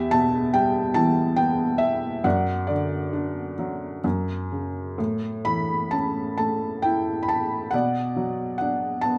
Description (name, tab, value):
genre	classical, lyrical solo piano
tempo	63-73 BPM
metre	3/4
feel	rubato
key	unclear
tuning	A4 = 441 Hz
part	felt-muted upright piano	solo	0.0-9.2 s	E2 to B5	-24 LUFS	equal	none
room	light reverb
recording	close, detailed microphones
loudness	-25 LUFS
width	mono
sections	0.0-9.2 A section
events	none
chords	0.0 Em; 2.2 D/F#; 4.0 F#5; 5.0 A; 7.7 Bm